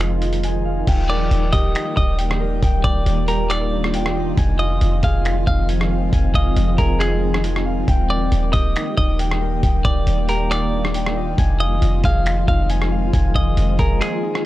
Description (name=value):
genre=hip hop, atmospheric cloud-rap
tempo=137 BPM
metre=4/4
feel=half-time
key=unclear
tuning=A4 = 439 Hz
part: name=ethereal airy pad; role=sustained chords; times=0.0-14.5 s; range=Eb3 to G4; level=-24 LUFS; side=equal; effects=ensemble chorus, built-in reverb, sidechain pumping
part: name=Celtic harp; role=arpeggios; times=0.0-14.5 s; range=D4 to D6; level=-28 LUFS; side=left 3 dB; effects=analog delay
part: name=warm 808-style bass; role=bass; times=0.0-14.0 s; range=Eb1 to F1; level=-19 LUFS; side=equal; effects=none
part: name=lo-fi sampler-style drum kit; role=drums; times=0.0-14.4 s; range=crash cymbal, finger snaps, hi-hat, kick drum, rim click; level=-21 LUFS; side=equal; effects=overdrive
part: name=semi-hollow electric guitar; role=melody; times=1.1-14.4 s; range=Ab4 to F5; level=-25 LUFS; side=equal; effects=analog delay
room=little or no reverb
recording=dry, gritty hardware recording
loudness=-16 LUFS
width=side -16 dB against mid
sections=0.9-14.5 A section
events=break 14.0-14.5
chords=0.0 Fm7; 0.9 Ebmaj7; 4.4 Fm7; 7.9 Ebmaj7; 11.4 Fm7